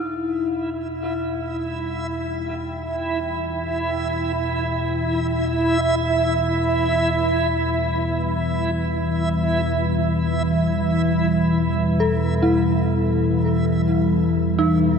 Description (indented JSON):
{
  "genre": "dark ambient drone",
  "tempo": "free time",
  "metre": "none",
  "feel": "none",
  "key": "unclear",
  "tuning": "A4 = 440 Hz",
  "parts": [
    { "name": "deep dark ambient pad", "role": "sustained chords", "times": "1.6-15.0 s", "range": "E3 to B5", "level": "-23 LUFS", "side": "left 1 dB", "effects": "chorus, built-in reverb" },
    { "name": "dark detuned synth bell", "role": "arpeggios", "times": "0.0-15.0 s", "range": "D#4 to A4", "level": "-25 LUFS", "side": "equal", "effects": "chorus, phaser, diffuse ambient delay, shimmer reverb" },
    { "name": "deep rumbling drone", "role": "drone", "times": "0.2-15.0 s", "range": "E2 to B2", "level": "-26 LUFS", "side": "left 1 dB", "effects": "built-in reverb" },
    { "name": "backwards swelling texture", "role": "texture", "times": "0.6-15.0 s", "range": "E4", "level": "-23 LUFS", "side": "right 2 dB", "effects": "built-in reverb, shimmer reverb" }
  ],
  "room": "wet cathedral reverb, RT60 7.7 s",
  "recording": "none",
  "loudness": "-19 LUFS",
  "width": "side -6 dB against mid",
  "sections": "0.0-15.0 A section",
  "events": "fade-in on synth drone 0.0-15.0; fade-in on ambient pad 0.0-15.0",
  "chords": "0.0 Em"
}